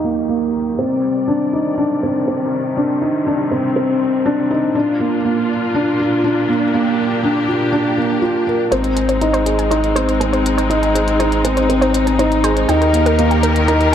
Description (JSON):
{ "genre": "piano and strings electronica", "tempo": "121 BPM", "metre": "4/4", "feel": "straight", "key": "unclear", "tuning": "A4 = 440 Hz", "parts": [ { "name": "clear symphonic string section", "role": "sustained chords", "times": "0.0-13.9 s", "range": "Eb2 to D5", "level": "-22 LUFS", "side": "left 3 dB", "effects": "none" }, { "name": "felt-muted upright piano", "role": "riff", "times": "0.0-13.9 s", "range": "Bb3 to Bb4", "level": "-16 LUFS", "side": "equal", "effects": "ping-pong delay" }, { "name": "wide unison pluck", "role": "arpeggios", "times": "8.7-13.9 s", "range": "Bb4 to Ab5", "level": "-22 LUFS", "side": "equal", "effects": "ping-pong delay" }, { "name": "warm sub bass", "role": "bass", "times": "8.7-13.9 s", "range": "Ab1 to Eb2", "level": "-20 LUFS", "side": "left 1 dB", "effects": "none" }, { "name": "electronic hi-hat", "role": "drums", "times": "8.7-13.9 s", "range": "none", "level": "-30 LUFS", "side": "left 2 dB", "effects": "none" } ], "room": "moderate lush hall reverb, RT60 1.7 s, studio reverb", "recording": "dark, warm production, low-pass filter", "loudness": "-14 LUFS", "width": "side -9 dB against mid", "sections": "0.0-8.7 A section; 8.7-13.9 B section", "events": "fade-in on string section 0.0-8.7; filter sweep 0.0-8.7; build-up 8.7-13.9", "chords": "0.0 Eb; 0.8 Cmadd9; 4.8 Bb; 8.7 Ab; 12.7 Eb" }